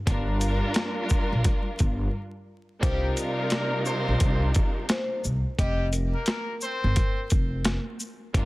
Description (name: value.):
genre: hip hop, boom-bap hip-hop.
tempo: 87 BPM.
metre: 4/4.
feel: swing 62% on 16ths.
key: unclear.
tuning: A4 = 440 Hz.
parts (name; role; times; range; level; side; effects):
warm studio string section; accompaniment; 0.1-8.5 s; C3 to Bb4; -30 LUFS; equal; cassette tape, high-pass filter, low-pass filter.
upright bass; bass; 0.1-8.5 s; F1 to C2; -26 LUFS; equal; none.
boom bap sampler-style drum kit; drums; 0.1-8.5 s; hi-hat, kick drum, shaker, snare drum; -26 LUFS; equal; overdrive.
vibraphone with soft mallets; melody; 2.8-7.8 s; Bb4 to Eb5; -34 LUFS; left 2 dB; high-pass filter, low-pass filter, digital delay.
clear trumpet section; stabs; 2.8-7.3 s; G3 to C5; -34 LUFS; equal; high-pass filter, low-pass filter, digital delay.
room: light reverb.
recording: dense, heavily limited modern master, vinyl crackle.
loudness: -23 LUFS.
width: side -20 dB against mid.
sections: 0.0-8.5 A section.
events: break 2.1-2.8.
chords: 0.0 Gm7; 2.8 Cm11; 5.6 Fsus24.